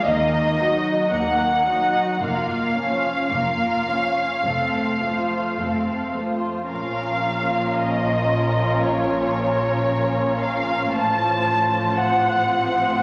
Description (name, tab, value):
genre	classical, slow romantic movement for string orchestra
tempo	52-58 BPM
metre	4/4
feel	rubato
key	Bb minor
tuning	A4 = 439 Hz
part	muted symphonic violin section	melody	0.0-13.0 s	Db5 to A5	-24 LUFS	equal	none
part	muted symphonic violin section	second line	0.0-13.0 s	Db4 to Eb5	-30 LUFS	equal	none
part	muted symphonic viola section	accompaniment	0.0-13.0 s	Eb3 to Eb4	-28 LUFS	equal	none
part	muted symphonic cello section	bass	0.1-13.0 s	Eb2 to Bb2	-33 LUFS	equal	none
part	muted symphonic double bass section	bass	0.1-13.0 s	F1 to Eb2	-33 LUFS	equal	none
room	wet concert hall reverb, RT60 2.1 s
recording	vinyl crackle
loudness	-21 LUFS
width	mono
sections	0.0-13.0 A section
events	none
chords	0.1 Ebm; 2.2 Bbm/F; 4.5 F; 6.7 Bbm; 10.9 F/A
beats	0.07 1.12 | 2.20 3.32 4.46 5.59 | 6.71 7.79 8.84 9.88 | 10.95 12.01